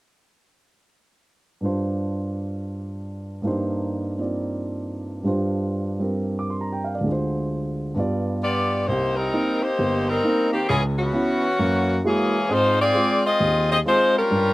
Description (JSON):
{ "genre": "jazz", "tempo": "133 BPM", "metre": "4/4", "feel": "swing 66% on 8ths", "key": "C minor", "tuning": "A4 = 440 Hz", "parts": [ { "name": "warm grand piano", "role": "accompaniment", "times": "1.6-14.5 s", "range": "G1 to D6", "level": "-23 LUFS", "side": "right 1 dB", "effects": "none" }, { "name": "clear saxophone section", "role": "melody", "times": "8.4-14.5 s", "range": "Eb3 to Eb5", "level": "-20 LUFS", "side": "left 1 dB", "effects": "none" } ], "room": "little or no reverb", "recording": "recorded outdoors, with no room sound", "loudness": "-20 LUFS", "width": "side -18 dB against mid", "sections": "1.6-8.9 A section; 8.9-14.5 B section", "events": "none", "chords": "1.6 G7sus4; 3.4 Cm9/G; 5.2 G7sus4; 7.1 Dm7b5; 8.0 G7; 8.9 Cm7; 10.7 Dbm7; 11.6 F#9; 12.5 Ab6", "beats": "| 1.62 2.07 2.53 2.98 | 3.43 3.89 4.34 4.79 | 5.25 5.70 6.15 6.60 | 7.06 7.51 7.96 8.41 | 8.87 9.32 9.77 10.22 | 10.68 11.13 11.58 12.03 | 12.48 12.94 13.39 13.84 | 14.29" }